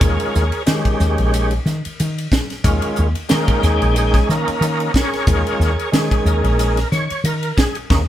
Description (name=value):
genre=electric jazz fusion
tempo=91 BPM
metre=4/4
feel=swing 56% on 16ths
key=Eb mixolydian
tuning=A4 = 441 Hz
part: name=overdriven tonewheel organ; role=accompaniment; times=0.0-8.0 s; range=Eb3 to G5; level=-20 LUFS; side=right 1 dB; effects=slow rotary speaker, chorus vibrato
part: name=woody fretless electric bass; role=bass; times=0.0-8.0 s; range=Bb1 to Eb3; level=-18 LUFS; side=equal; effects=none
part: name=crisp fusion drum kit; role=drums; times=0.0-8.1 s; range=hi-hat, kick drum, ride cymbal, snare drum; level=-20 LUFS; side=equal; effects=none
room=moderate studio reverb, RT60 0.7 s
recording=band playing live in one room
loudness=-15 LUFS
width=side -12 dB against mid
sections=0.0-8.1 A section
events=band accent 7.9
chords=0.0 Eb7sus4